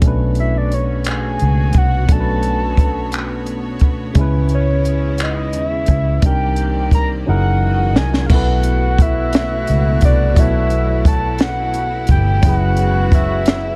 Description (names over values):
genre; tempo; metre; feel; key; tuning
slow six-eight R&B; 58 BPM (dotted quarters); 6/8; straight; B dorian; A4 = 440 Hz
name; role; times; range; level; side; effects
barky tine electric piano; accompaniment; 0.0-13.8 s; B2 to C#5; -25 LUFS; equal; overdrive
clear symphonic string section; sustained chords; 0.0-13.8 s; B2 to D#5; -32 LUFS; equal; none
vintage muted fingered electric bass; bass; 0.0-13.8 s; F#1 to D#2; -20 LUFS; equal; none
compact cocktail drum kit; drums; 0.0-13.6 s; crash cymbal, finger snaps, hi-hat, kick drum, snare drum; -17 LUFS; equal; none
soft octave-layered synth lead; melody; 0.4-13.8 s; C#5 to Bb5; -24 LUFS; equal; chorus
warm horn section; stabs; 8.3-13.8 s; B2 to F#4; -30 LUFS; equal; none
room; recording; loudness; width
studio reverb; none; -16 LUFS; mono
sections
0.0-8.3 A section; 8.3-13.8 B section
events
drum fill 7.3-8.3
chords
0.0 Bm9; 4.2 C#m9; 6.2 Cm9; 7.3 F#13; 8.3 B9sus4; 12.4 F#9sus4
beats
| 0.02 1.05 | 2.09 3.12 | 4.16 5.19 | 6.22 7.26 | 8.29 9.33 | 10.36 11.40 | 12.43 13.46